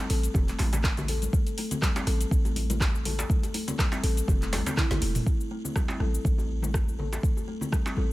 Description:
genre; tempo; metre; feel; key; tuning
afro house; 122 BPM; 4/4; swing 55% on 16ths; A minor; A4 = 440 Hz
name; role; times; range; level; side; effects
buzzing kalimba; arpeggios; 0.0-8.0 s; G3 to A4; -34 LUFS; left 1 dB; sidechain pumping, tape echo
afro-pop drum kit; drums; 0.0-8.0 s; handclaps, hi-hat, rim click, shaker, snare drum, toms; -33 LUFS; equal; none
djembe; percussion; 0.0-7.9 s; none; -38 LUFS; right 2 dB; none
warm 808-style bass; bass; 0.1-8.1 s; E1 to A1; -28 LUFS; equal; sidechain pumping
electronic kick drum; drums; 0.3-7.8 s; none; -26 LUFS; equal; none
congas; percussion; 0.4-8.1 s; none; -36 LUFS; left 3 dB; none
room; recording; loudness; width
small room ambience; none; -24 LUFS; side -18 dB against mid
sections
0.0-5.3 A section; 5.3-8.1 B section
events
drop 0.0-5.3; drum fill 4.5-5.3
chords
0.0 Am

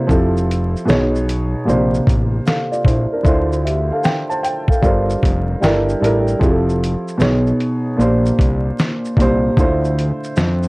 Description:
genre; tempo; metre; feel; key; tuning
lo-fi hip hop; 76 BPM; 4/4; swing 65% on 16ths; unclear; A4 = 442 Hz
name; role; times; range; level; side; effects
dark upright piano; accompaniment; 0.0-10.7 s; Bb2 to A5; -17 LUFS; equal; cassette tape
fat analog bass; bass; 0.1-10.7 s; F1 to F2; -19 LUFS; equal; none
dusty soul sampler-style drum kit; drums; 0.1-10.7 s; hi-hat, kick drum, shaker, snare drum; -17 LUFS; equal; none
room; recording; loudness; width
light reverb; worn, warbling old tape, cassette tape, vinyl crackle, warbly pitch drift; -14 LUFS; side -23 dB against mid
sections
0.0-6.4 A section; 6.4-10.7 B section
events
none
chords
0.1 Fmaj9; 0.9 B69; 1.7 Bb69; 3.2 Dm9; 4.8 Gm11; 5.6 Gm69; 6.4 Fmaj9; 7.2 B69; 8.0 Bb69; 9.6 Dm9

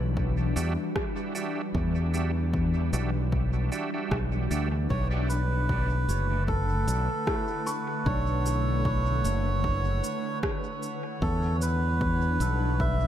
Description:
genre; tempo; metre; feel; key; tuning
ambient dub; 76 BPM; 4/4; swing 56% on 16ths; B minor; A4 = 441 Hz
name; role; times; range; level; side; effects
granular cloud pad; sustained chords; 0.0-13.1 s; D3 to F#5; -34 LUFS; left 1 dB; built-in reverb
modern bright fingered electric bass; bass; 0.0-13.1 s; F#1 to E2; -26 LUFS; equal; none
electronic kick drum; drums; 0.2-13.0 s; none; -32 LUFS; equal; overdrive
overdriven tonewheel organ; stabs; 0.6-4.7 s; D4 to E5; -37 LUFS; right 4 dB; chorus vibrato, dub echo
electronic cabasa and rim click; drums; 0.6-12.6 s; none; -37 LUFS; right 1 dB; overdrive, dub echo
melodica; melody; 4.9-13.1 s; A4 to E5; -31 LUFS; right 2 dB; tape echo
felt-muted upright piano; arpeggios; 7.3-13.1 s; D4 to C#6; -39 LUFS; left 3 dB; tape echo
room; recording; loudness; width
light reverb; none; -25 LUFS; side -11 dB against mid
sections
0.0-13.1 A section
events
none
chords
0.0 Em9; 4.9 Bm9; 11.2 Em9

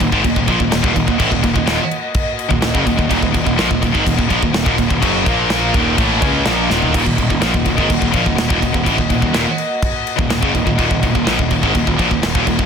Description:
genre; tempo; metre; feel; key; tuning
heavy metal; 125 BPM; 4/4; straight; Eb minor; A4 = 440 Hz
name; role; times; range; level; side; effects
dark chamber string section; sustained chords; 0.0-12.7 s; Bb3 to F5; -26 LUFS; left 1 dB; none
distorted electric guitar; riff; 0.0-12.7 s; Eb2 to Db4; -22 LUFS; left 1 dB; none
heavy high-gain guitar; riff; 0.0-12.7 s; Eb2 to Db4; -20 LUFS; left 13 dB; distortion
heavy high-gain guitar; riff; 0.0-12.7 s; Eb2 to Db4; -20 LUFS; right 14 dB; distortion
fuzz picked electric bass; bass; 0.0-12.7 s; Eb1 to Db2; -22 LUFS; equal; overdrive
modern studio drum kit; drums; 0.0-12.7 s; crash cymbal, kick drum, snare drum, toms; -19 LUFS; equal; none
room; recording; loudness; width
light reverb; dense, heavily limited modern master; -13 LUFS; side -7 dB against mid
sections
0.0-12.7 A section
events
drum fill 6.7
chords
0.0 Ebm; 5.3 Bb5; 5.7 Ebm

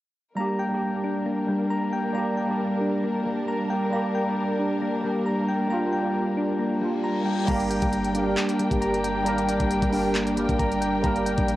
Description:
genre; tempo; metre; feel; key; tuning
hip hop, trap; 135 BPM; 4/4; half-time; G minor; A4 = 440 Hz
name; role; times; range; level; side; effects
mellow tine electric piano; accompaniment; 0.4-11.6 s; G3 to Bb4; -26 LUFS; right 2 dB; ensemble chorus, cassette tape
dark symphonic string section; sustained chords; 0.4-11.6 s; G3 to G5; -31 LUFS; left 1 dB; cassette tape
soft electric-piano-like synth keys; arpeggios; 0.4-11.6 s; G3 to Bb5; -27 LUFS; left 2 dB; chorus, cassette tape, analog delay
reverse cymbal; sound effects; 6.8-7.5 s; none; -39 LUFS; left 6 dB; none
long sustained 808-style bass; bass; 7.5-11.6 s; G1 to Bb1; -33 LUFS; equal; none
trap drum kit; drums; 7.5-11.6 s; crash cymbal, handclaps, hi-hat, kick drum; -29 LUFS; equal; overdrive, cassette tape
room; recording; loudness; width
light reverb, digital ambience; home recording on cassette; -22 LUFS; side -15 dB against mid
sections
0.4-7.5 A section; 7.5-11.6 B section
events
reverse cymbal 6.8-7.5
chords
0.4 Gm

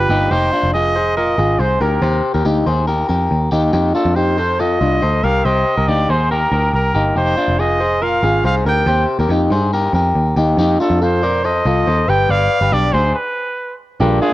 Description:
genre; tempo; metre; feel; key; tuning
indie pop; 140 BPM; 4/4; straight; unclear; A4 = 441 Hz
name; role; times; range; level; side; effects
clear trumpet; melody; 0.0-14.3 s; Ab4 to G5; -19 LUFS; right 2 dB; none
reed electric piano; accompaniment; 0.0-0.3, 14.0-14.3 s; D4 to D5; -20 LUFS; right 5 dB; cassette tape
lush unison pad; sustained chords; 0.0-0.3, 14.0-14.3 s; none; barely audible; none; none
electric guitar at the edge of break-up; arpeggios; 0.0-14.3 s; D4 to D5; -17 LUFS; left 1 dB; phaser, cassette tape
picked electric bass; bass; 0.0-14.2 s; F1 to G2; -18 LUFS; equal; none
room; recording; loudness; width
light reverb; home recording on cassette; -13 LUFS; side -16 dB against mid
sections
0.3-14.0 A section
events
stop 13.2-14.0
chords
0.3 Fm7; 2.0 Eb; 3.7 F7; 5.2 Cm7; 7.2 Fm7; 8.9 Ebadd9; 10.6 F7; 12.1 G7

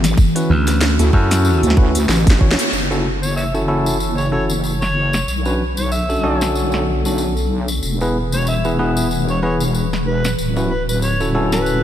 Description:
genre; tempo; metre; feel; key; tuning
glitch hop; 94 BPM; 4/4; swing 56% on 16ths; F# minor; A4 = 440 Hz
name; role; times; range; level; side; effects
warbly tape-like pad; sustained chords; 0.0-11.8 s; D3 to A4; -25 LUFS; equal; chorus, built-in reverb, sidechain pumping
wobble bass; bass; 0.0-11.8 s; D1 to D2; -20 LUFS; equal; chorus, tube saturation
drum and bass drum kit; drums; 0.0-11.6 s; hi-hat, snare drum; -23 LUFS; equal; low-pass filter on hats, studio reverb, low-pass filter on snare
tambourine; percussion; 0.0-11.8 s; none; -30 LUFS; left 3 dB; none
electronic kick drum; drums; 0.2-2.6 s; none; -12 LUFS; equal; studio reverb
bell-like tine electric piano; stabs; 0.4-11.8 s; B3 to C#5; -22 LUFS; equal; sidechain pumping, ping-pong delay
slap bass; bass; 0.5-1.6 s; D2 to F#2; -15 LUFS; equal; none
overdriven harmonica; melody; 3.2-11.8 s; B4 to E5; -24 LUFS; equal; ping-pong delay
room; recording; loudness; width
moderate lush hall reverb, RT60 2.9 s; bright 1980s-style digital production; -15 LUFS; side -11 dB against mid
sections
0.0-2.7 A section; 2.7-11.8 B section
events
drum fill 2.1-2.7; band accent 2.5-2.8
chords
0.2 Dmaj7; 2.7 F#m7; 5.3 Bm7; 7.8 E; 10.4 Dmaj7

